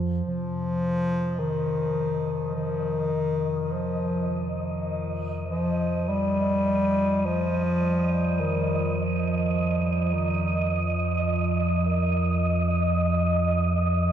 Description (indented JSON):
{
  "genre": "dark ambient drone",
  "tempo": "free time",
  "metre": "none",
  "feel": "none",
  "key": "unclear",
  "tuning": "A4 = 440 Hz",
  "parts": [
    { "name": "deep rumbling drone", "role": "drone", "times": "0.0-14.1 s", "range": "F2 to F3", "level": "-27 LUFS", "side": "right 1 dB", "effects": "built-in reverb, analog chorus" },
    { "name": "mellow bass clarinet", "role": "melody", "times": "0.3-9.2 s", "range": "Eb3 to G3", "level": "-26 LUFS", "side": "left 1 dB", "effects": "analog delay" },
    { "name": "gamelan-type bossed gongs", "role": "arpeggios", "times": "0.3-7.2 s", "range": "none", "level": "barely audible", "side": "none", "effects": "none" },
    { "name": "wind-like tuned noise texture", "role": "texture", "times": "1.4-14.1 s", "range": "Eb5", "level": "-30 LUFS", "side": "right 2 dB", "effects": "built-in reverb" }
  ],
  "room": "wet cathedral reverb, RT60 5.2 s",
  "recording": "dreamy mix soaked in reverb",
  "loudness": "-23 LUFS",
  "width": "side -9 dB against mid",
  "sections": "0.3-14.1 A section",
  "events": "fade-in on synth drone 0.3-14.1",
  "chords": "0.3 F5"
}